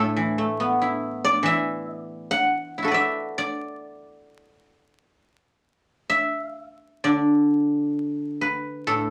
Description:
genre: chinese traditional, Chinese solo plucked strings.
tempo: 62-72 BPM.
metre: 4/4.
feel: rubato.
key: D gong mode.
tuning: A4 = 440 Hz.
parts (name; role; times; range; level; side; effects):
guzheng; solo; 0.0-9.1 s; A2 to F#5; -24 LUFS; equal; none.
room: wet studio ambience, RT60 0.5 s.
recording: vinyl crackle.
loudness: -24 LUFS.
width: mono.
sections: 0.0-7.0 A section; 7.0-9.1 B section.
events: none.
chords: none.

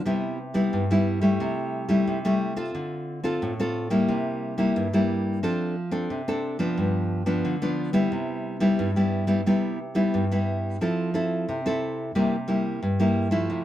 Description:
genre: samba.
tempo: 89 BPM.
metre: 4/4.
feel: straight.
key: C major.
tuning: A4 = 440 Hz.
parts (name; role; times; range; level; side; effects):
nylon-string guitar; solo; 0.0-13.6 s; G2 to A4; -23 LUFS; equal; none.
room: moderate studio reverb, RT60 0.6 s.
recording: band playing live in one room.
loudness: -23 LUFS.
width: side -12 dB against mid.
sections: 0.0-10.8 A section; 10.8-13.6 B section.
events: none.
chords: 0.1 Cmaj7; 1.4 Am7/C; 2.7 Dm7; 4.1 C7; 5.4 F6; 6.8 G7; 8.1 Cmaj7; 10.8 Fmaj7; 12.2 C7.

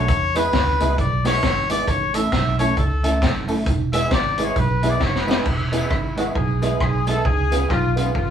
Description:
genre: ska.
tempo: 134 BPM.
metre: 4/4.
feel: swing 60% on 8ths.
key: E mixolydian.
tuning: A4 = 439 Hz.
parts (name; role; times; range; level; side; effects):
clear trumpet; melody; 0.0-5.5 s; A4 to E5; -23 LUFS; left 2 dB; none.
electric guitar at the edge of break-up; accompaniment; 0.0-8.1 s; G#3 to A4; -29 LUFS; right 4 dB; none.
honky-tonk upright piano; stabs; 0.0-8.1 s; G#3 to A4; -26 LUFS; left 1 dB; none.
vintage muted fingered electric bass; bass; 0.0-8.3 s; E1 to E2; -23 LUFS; right 1 dB; none.
street-band drum kit; drums; 0.1-8.3 s; crash cymbal, hi-hat, kick drum, rim click, snare drum; -22 LUFS; equal; none.
tambourine; percussion; 0.4-8.1 s; none; -43 LUFS; left 3 dB; none.
clear horn section; melody; 5.7-8.3 s; E4 to A4; -25 LUFS; left 2 dB; none.
room: moderate small room reverb, RT60 0.5 s.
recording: band playing live in one room.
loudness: -18 LUFS.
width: side -8 dB against mid.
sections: 0.0-5.5 A section; 5.5-8.3 B section.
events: trumpet solo 0.0-5.5; drum fill 5.0-5.5.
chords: 0.1 E; 1.9 A; 3.7 E; 7.3 C#7.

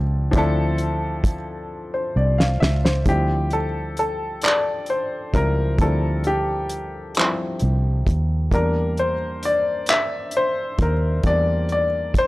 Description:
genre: slow six-eight R&B.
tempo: 44 BPM (dotted quarters).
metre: 6/8.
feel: straight.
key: D minor.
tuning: A4 = 440 Hz.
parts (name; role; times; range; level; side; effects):
warm baby grand piano; accompaniment; 0.0-12.3 s; F3 to F5; -22 LUFS; left 1 dB; none.
vintage muted fingered electric bass; bass; 0.0-12.3 s; C2 to E2; -22 LUFS; equal; transformer saturation.
cloth-damped thuddy drum kit; drums; 0.3-12.3 s; handclaps, hi-hat, kick drum, snare drum; -20 LUFS; equal; none.
room: little or no reverb.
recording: dry, gritty hardware recording, transformer saturation.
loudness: -19 LUFS.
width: side -19 dB against mid.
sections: 0.0-3.1 A section; 3.1-12.3 B section.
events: drum fill 1.7-3.1; grand piano solo 3.1-12.3.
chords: 0.0 Dm9; 3.1 Dm11; 8.5 Em7b5.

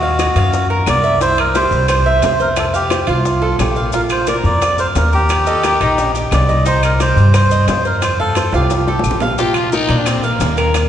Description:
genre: latin, Cuban son and guajira.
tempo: 176 BPM.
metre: 4/4.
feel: straight.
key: Bb major.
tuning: A4 = 440 Hz.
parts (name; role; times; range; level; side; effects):
melodica; melody; 0.0-9.2 s; F4 to D5; -18 LUFS; equal; none.
Cuban tres; arpeggios; 0.0-10.9 s; Eb4 to F5; -19 LUFS; right 3 dB; none.
upright bass; bass; 0.0-10.9 s; Bb1 to Bb2; -16 LUFS; equal; none.
bongos; percussion; 0.0-10.9 s; none; -25 LUFS; left 5 dB; none.
claves; percussion; 0.2-10.9 s; none; -32 LUFS; left 6 dB; none.
maracas; percussion; 0.2-10.9 s; none; -32 LUFS; left 7 dB; none.
timbales; percussion; 0.2-10.9 s; none; -25 LUFS; right 3 dB; none.
growling trumpet; second line; 5.5-6.2, 9.4-10.9 s; Bb3 to A4; -22 LUFS; left 4 dB; none.
room: wet church reverb, RT60 3.4 s.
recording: recorded in a church or concert hall, nothing above 10.4 kHz.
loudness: -12 LUFS.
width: side -10 dB against mid.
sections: 0.0-9.4 A section; 9.4-10.9 B section.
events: drum fill 8.5-9.4.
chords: 0.0 Ebmadd9; 1.2 C; 2.6 F; 3.9 Bb; 5.3 Eb; 6.7 Cm; 8.0 Fadd9; 9.4 Bb.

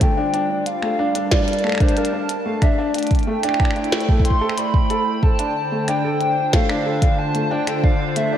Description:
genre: IDM.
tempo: 92 BPM.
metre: 4/4.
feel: straight.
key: D minor.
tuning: A4 = 440 Hz.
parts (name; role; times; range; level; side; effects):
warbly nostalgic lead; melody; 0.0-8.4 s; Bb4 to C6; -23 LUFS; equal; lush chorus, analog delay.
hollow soft pad; sustained chords; 0.0-8.4 s; D3 to A5; -25 LUFS; right 1 dB; chorus.
felt-muted upright piano; arpeggios; 0.0-8.4 s; A3 to D5; -24 LUFS; left 2 dB; tape echo.
electronic kick drum; drums; 0.0-8.0 s; none; -17 LUFS; equal; none.
glitchy drum kit; drums; 0.0-8.3 s; finger snaps, hi-hat, snare drum; -26 LUFS; equal; none.
room: moderate lush hall reverb, RT60 2.5 s.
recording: dreamy mix soaked in reverb.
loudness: -17 LUFS.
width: side -10 dB against mid.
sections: 0.0-8.4 A section.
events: none.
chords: 0.0 Gm7; 2.6 Am7; 5.2 Dm7.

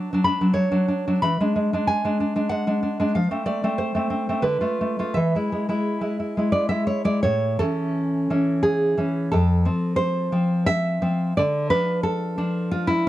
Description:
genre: romantic piece for solo classical guitar.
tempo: 79-97 BPM.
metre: 3/4.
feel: rubato.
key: unclear.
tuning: A4 = 441 Hz.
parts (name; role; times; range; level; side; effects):
nylon-string guitar; solo; 0.0-13.1 s; F2 to B5; -20 LUFS; equal; none.
room: light reverb.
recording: cassette tape.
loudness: -20 LUFS.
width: side -14 dB against mid.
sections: 0.0-7.2 A section; 7.2-13.1 B section.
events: none.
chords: 0.0 D; 1.2 E7 (rootless); 3.1 F; 4.4 Bm7b5/D; 5.2 E; 7.2 A; 9.3 F; 11.4 Dm.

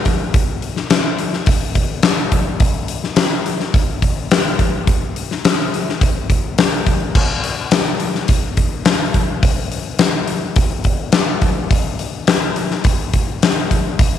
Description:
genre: rock.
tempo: 106 BPM.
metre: 4/4.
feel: straight.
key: none.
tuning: none.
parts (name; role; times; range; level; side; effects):
huge arena drum kit; drums; 0.1-14.1 s; crash cymbal, hi-hat, kick drum, snare drum; -14 LUFS; left 1 dB; none.
room: moderate echo chamber reverb, RT60 2.2 s.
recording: 1960s-style stereo.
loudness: -15 LUFS.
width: side -10 dB against mid.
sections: 0.0-14.2 A section.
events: none.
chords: none.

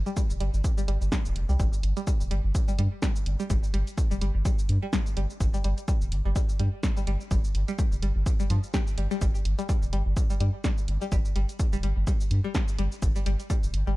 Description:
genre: minimal techno.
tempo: 126 BPM.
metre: 4/4.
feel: swing 56% on 16ths.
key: unclear.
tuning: A4 = 441 Hz.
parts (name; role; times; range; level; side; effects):
string-like resonator pluck; riff; 0.1-13.9 s; F3 to G4; -35 LUFS; left 2 dB; chorus, phaser, sidechain pumping, dub echo.
punchy analog drum machine; drums; 0.1-13.8 s; hi-hat, shaker, snare drum; -35 LUFS; equal; studio reverb.
electronic kick drum; drums; 0.2-13.6 s; none; -27 LUFS; equal; studio reverb.
round analog bass; bass; 0.3-13.9 s; D1 to G2; -26 LUFS; equal; sidechain pumping.
room: little or no reverb.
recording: dark, warm production.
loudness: -24 LUFS.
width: side -19 dB against mid.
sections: 0.0-1.6 A section; 1.6-14.0 B section.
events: drop 1.6-14.0.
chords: 0.0 N.C.; 1.6 G5.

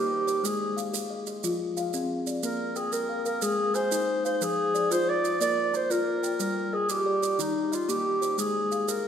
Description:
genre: southern african traditional, mbira-style interlocking cycle.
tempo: 121 BPM (dotted quarters).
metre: 12/8.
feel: straight.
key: Bb mixolydian.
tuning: A4 = 439 Hz.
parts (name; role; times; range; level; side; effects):
dark clarinet; melody; 0.0-9.1 s; Eb4 to D5; -27 LUFS; right 1 dB; none.
kalimba; arpeggios; 0.0-9.1 s; Eb3 to Bb5; -30 LUFS; left 3 dB; none.
maracas; percussion; 0.3-9.0 s; none; -36 LUFS; right 9 dB; none.
room: wet church reverb, RT60 2.9 s.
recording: recorded in a church or concert hall.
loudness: -25 LUFS.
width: side -8 dB against mid.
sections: 0.0-9.1 A section.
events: none.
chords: 0.4 Ab; 1.4 Fm; 2.4 Bb; 3.4 Ab; 4.4 Fm; 5.4 Bb; 6.4 Gm; 7.4 Eb; 8.4 Ab.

